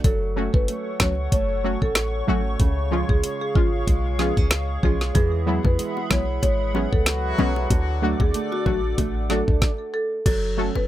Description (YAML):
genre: dancehall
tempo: 94 BPM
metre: 4/4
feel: swing 56% on 16ths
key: F# minor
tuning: A4 = 442 Hz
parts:
  - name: marimba with medium mallets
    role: melody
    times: 0.0-10.9 s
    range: E#4 to C#5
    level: -28 LUFS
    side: equal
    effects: ping-pong delay
  - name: hollow soft pad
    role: sustained chords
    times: 0.3-9.6 s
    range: G#4 to D6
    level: -32 LUFS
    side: left 2 dB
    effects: chorus, sidechain pumping
  - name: flamenco guitar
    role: arpeggios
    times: 0.0-10.9 s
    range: C#3 to F#4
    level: -31 LUFS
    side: right 8 dB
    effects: ping-pong delay
  - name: clean 808-style bass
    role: bass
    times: 0.0-10.9 s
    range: F#1 to E2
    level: -25 LUFS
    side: equal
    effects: none
  - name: island pop drum kit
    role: drums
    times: 0.0-10.4 s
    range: crash cymbal, finger snaps, hi-hat, kick drum, snare drum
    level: -21 LUFS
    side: equal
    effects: none
  - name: synth brass stab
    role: accompaniment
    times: 0.4-10.7 s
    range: E#3 to A4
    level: -24 LUFS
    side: left 1 dB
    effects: chorus, sidechain pumping
  - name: bongos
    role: percussion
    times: 5.1-10.9 s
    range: none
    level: -32 LUFS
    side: left 9 dB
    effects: none
  - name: warm horn section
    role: second line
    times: 7.1-8.0 s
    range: F#3 to F#4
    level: -31 LUFS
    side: left 2 dB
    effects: ping-pong delay
room: little or no reverb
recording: none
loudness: -20 LUFS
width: side -13 dB against mid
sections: 0.0-10.3 A section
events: stop 9.6-10.3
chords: 0.0 F#m; 2.6 C#; 5.2 Eadd9; 7.7 D; 10.3 F#m